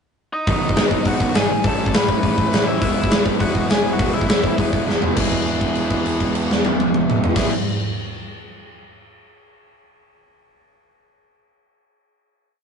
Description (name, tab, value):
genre	punk rock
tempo	204 BPM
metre	4/4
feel	straight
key	E major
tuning	A4 = 440 Hz
part	biting lead guitar	melody	0.3-4.5 s	D#4 to B5	-24 LUFS	left 2 dB	overdrive
part	crunchy overdriven guitar	riff	0.5-7.5 s	A2 to E4	-24 LUFS	right 3 dB	none
part	distorted electric guitar	riff	0.5-7.5 s	A2 to G#4	-27 LUFS	left 6 dB	overdrive
part	fuzz picked electric bass	bass	0.5-7.5 s	E1 to B1	-29 LUFS	equal	none
part	big rock drum kit	drums	0.5-7.4 s	crash cymbal, hi-hat, kick drum, snare drum, toms	-19 LUFS	equal	none
room	light reverb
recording	rough rehearsal-room recording, tube saturation, nothing above 10.6 kHz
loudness	-16 LUFS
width	side -6 dB against mid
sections	0.0-0.5 pickup bar; 0.5-5.2 chorus; 5.2-7.5 final chord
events	drum fill 4.9; held note 5.2-7.4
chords	0.5 B; 1.5 A; 2.8 E